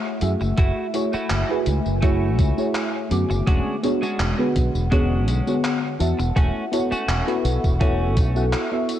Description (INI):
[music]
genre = vaporwave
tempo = 83 BPM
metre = 4/4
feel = swing 53% on 16ths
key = A major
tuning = A4 = 440 Hz
[part]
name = mellow FM electric piano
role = accompaniment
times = 0.0-9.0 s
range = D3 to D6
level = -24 LUFS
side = equal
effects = phaser, analog chorus, analog delay
[part]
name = warbly tape-like pad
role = sustained chords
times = 0.0-9.0 s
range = G#3 to C#6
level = -31 LUFS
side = equal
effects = chorus, built-in reverb
[part]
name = fretless electric bass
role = bass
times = 0.2-8.5 s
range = E1 to F#2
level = -22 LUFS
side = equal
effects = tube saturation
[part]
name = gated 80s digital drum machine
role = drums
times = 0.2-9.0 s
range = handclaps, hi-hat, tambourine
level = -31 LUFS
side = equal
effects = gated reverb
[part]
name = clean electric guitar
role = riff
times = 0.4-8.4 s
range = G#3 to F#4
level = -30 LUFS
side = right 1 dB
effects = analog chorus, analog delay
[part]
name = electronic kick drum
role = drums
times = 0.6-8.3 s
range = none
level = -20 LUFS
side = equal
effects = none
[sound]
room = light reverb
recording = cassette tape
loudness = -19 LUFS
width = side -11 dB against mid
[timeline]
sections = 0.0-9.0 A section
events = break 8.5-9.0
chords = 0.0 F#m7; 3.5 E13; 6.4 A6/E